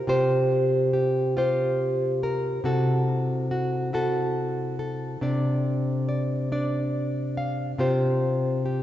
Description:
folk; 47 BPM (dotted quarters); 6/8; straight; A4 = 440 Hz
nylon-string guitar; solo; 0.1-8.8 s; C3 to F5; -23 LUFS; equal
wet church reverb, RT60 3.1 s; recorded in a church or concert hall, nothing above 7.8 kHz; -23 LUFS; side -12 dB against mid
0.0-8.8 A section
0.0 Csus4; 2.6 Am6/C; 5.2 Csus24; 7.8 Csus4
| 0.06 1.34 | 2.63 3.92 | 5.21 6.50 | 7.79

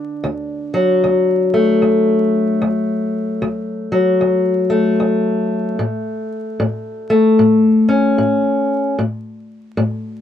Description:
blues; 75 BPM; 4/4; swing 62% on 8ths; D major; A4 = 440 Hz
fingerpicked steel-string acoustic guitar; solo; 0.0-10.2 s; D2 to D4; -14 LUFS; left 2 dB
wet booth ambience, RT60 0.2 s; vinyl crackle; -14 LUFS; side -10 dB against mid
0.0-10.2 A section
0.0 D; 5.8 A
0.22 1.02 1.81 | 2.61 3.40 4.20 5.00 | 5.79 6.59 7.38 8.18 | 8.98 9.77

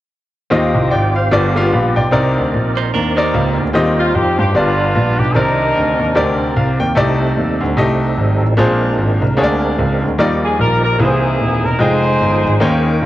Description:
gospel; 149 BPM; 4/4; swing 59% on 8ths; Eb major; A4 = 440 Hz
bright grand piano; accompaniment; 0.5-13.1 s; G2 to G5; -17 LUFS; left 1 dB
percussive tonewheel organ; sustained chords; 0.5-13.1 s; C3 to G5; -22 LUFS; right 3 dB; slow rotary speaker, overdrive, chorus vibrato
clear grand piano; bass; 0.5-13.1 s; D#1 to G2; -16 LUFS; equal; transformer saturation
clean electric guitar; second line; 2.8-3.7 s; Bb3 to C5; -22 LUFS; right 8 dB
warm horn section; melody; 4.0-6.6, 10.4-13.0 s; B3 to C5; -17 LUFS; equal; slapback echo
light reverb, small room ambience; worn, warbling old tape, cassette tape, warbly pitch drift; -12 LUFS; side -14 dB against mid
0.5-3.7 A section; 3.7-13.1 B section
grand piano fill 6.4-7.0
0.5 Eb69; 1.3 G7; 2.1 Cm9; 3.7 Eb69; 4.5 G7; 5.4 Cm9; 7.0 Cm69; 8.6 Bb9; 10.2 Ebmaj9; 11.0 C7alt; 11.8 Fm9
| 0.52 0.92 1.32 1.73 | 2.13 2.53 2.93 3.34 | 3.74 4.14 4.55 4.95 | 5.35 5.76 6.16 6.56 | 6.96 7.37 7.77 8.17 | 8.58 8.98 9.38 9.79 | 10.19 10.59 10.99 11.40 | 11.80 12.20 12.61 13.01

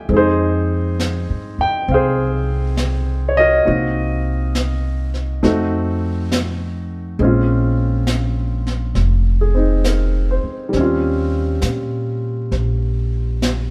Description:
jazz ballad; 68 BPM; 4/4; swing 66% on 8ths; F minor; A4 = 440 Hz
warm baby grand piano; accompaniment; 0.0-13.7 s; G3 to Ab5; -22 LUFS; equal
upright bass; bass; 0.1-13.7 s; F1 to Bb2; -21 LUFS; equal
jazz brush drum kit; drums; 0.1-13.7 s; brushed snare drum, hi-hat, snare drum; -26 LUFS; equal
moderate stone room reverb, RT60 1.3 s; band playing live in one room; -18 LUFS; mono
0.1-13.7 A section
0.1 Fm9; 3.7 Cm7b5; 5.4 F7b9; 7.2 Bbm9; 10.7 Eb13
| 0.10 0.99 1.89 2.77 | 3.66 4.55 5.43 6.31 | 7.19 8.08 8.96 9.85 | 10.74 11.63 12.53 13.43

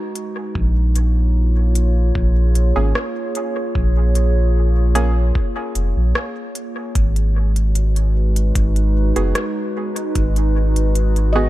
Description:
ambient dub; 75 BPM; 4/4; straight; G# dorian; A4 = 441 Hz
warbly tape-like pad; sustained chords; 0.0-11.5 s; G#3 to C#5; -25 LUFS; equal; chorus, built-in reverb
organic electronic drum kit; drums; 0.2-11.3 s; hi-hat, rim click; -27 LUFS; left 1 dB; dub echo
soft dub sub bass; bass; 0.6-11.5 s; E#1 to A#1; -16 LUFS; equal
electronic kick drum; drums; 0.6-10.3 s; -21 LUFS; equal
filtered dub chord stab; stabs; 2.8-11.5 s; A#3 to G#4; -26 LUFS; right 3 dB; chorus, dub echo
handpan; arpeggios; 11.3-11.5 s; D#5; -21 LUFS; equal
digital ambience; -16 LUFS; side -16 dB against mid
0.0-7.0 A section; 7.0-11.5 B section
0.0 G#m7; 0.6 A#m7; 7.0 G#m7
| 0.55 1.35 2.15 2.95 | 3.75 4.55 5.35 6.15 | 6.95 7.75 8.55 9.35 | 10.15 10.95

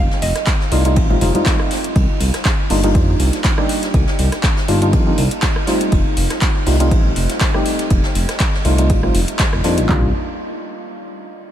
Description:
deep house; 121 BPM; 4/4; swing 55% on 16ths; C dorian; A4 = 440 Hz
mallet-like synth pluck; melody; 0.0-0.7 s; Eb5 to F5; -30 LUFS; right 4 dB
percussive organ stab; stabs; 0.0-10.1 s; G3 to G4; -20 LUFS; equal; analog chorus, sidechain pumping, analog delay
smooth synth bass; bass; 0.0-10.1 s; F1 to F2; -17 LUFS; equal
soft brush drum kit; drums; 0.1-9.8 s; hi-hat, ride cymbal, snare drum; -28 LUFS; right 1 dB; sidechain pumping on cymbals, high-pass filter on cymbals, sidechain pumping on hats, high-pass filter on hats, high-pass filter on snare, high-pass filter on room
deep house drum kit; drums; 0.2-9.9 s; handclaps, hi-hat, rim click; -24 LUFS; equal; overdrive
deep house drum kit; drums; 0.5-10.0 s; handclaps, kick drum, toms; -17 LUFS; equal; overdrive
congas; percussion; 1.1-1.4 s; -30 LUFS; right 2 dB
light reverb, small room ambience; -14 LUFS; side -11 dB against mid
0.0-9.9 A section; 9.9-11.5 B section
filter sweep on synth stab 0.0-9.9
0.0 F7; 2.0 Cm11; 5.9 F7; 9.9 Cm11
0.47 0.96 1.46 | 1.96 2.45 2.95 3.44 | 3.94 4.44 4.93 5.43 | 5.92 6.42 6.92 7.41 | 7.91 8.40 8.90 9.39 | 9.89

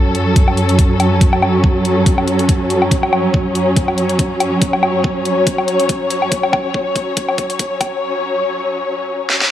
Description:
heavy wobble dubstep; 141 BPM; 4/4; swing 55% on 16ths, half-time; F# minor; A4 = 442 Hz
muted studio string section; sustained chords; 0.0-9.5 s; F#2 to C#5; -15 LUFS; equal; sidechain pumping
dubstep drum kit; drums; 0.1-9.5 s; hi-hat, snare drum, woodblock; -19 LUFS; left 2 dB; overdrive, high-pass filter on snare, small room ambience, high-pass filter on hats, high-pass filter on perc
electronic kick drum; drums; 0.4-7.9 s; -15 LUFS; equal; overdrive, small room ambience
light reverb; dark, warm production, high-pass filter; -13 LUFS; side -11 dB against mid
0.0-9.5 A section
build-up 0.0-9.5; filter sweep 0.0-9.5; drum fill 2.9-8.0, 9.3
0.0 F#m
0.36 0.79 | 1.21 1.64 2.06 2.49 | 2.91 3.34 3.77 4.19 | 4.62 5.04 5.47 5.89 | 6.32 6.74 7.17 7.59 | 8.02 8.45 8.87 9.30

